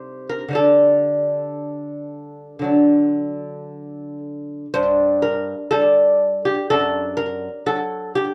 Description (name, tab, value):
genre	classical, baroque-style dance for lute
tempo	56-62 BPM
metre	4/4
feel	rubato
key	G minor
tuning	A4 = 439 Hz
part	lute	solo	0.0-8.3 s	F#2 to C5	-20 LUFS	equal	slapback echo
room	moderate studio ambience, RT60 0.5 s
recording	dry, close 1970s-style studio recording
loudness	-19 LUFS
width	mono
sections	0.0-4.7 A section; 4.7-8.3 B section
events	none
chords	0.0 Cm; 0.6 Dsus4; 2.7 D; 4.7 G5; 6.7 D/F#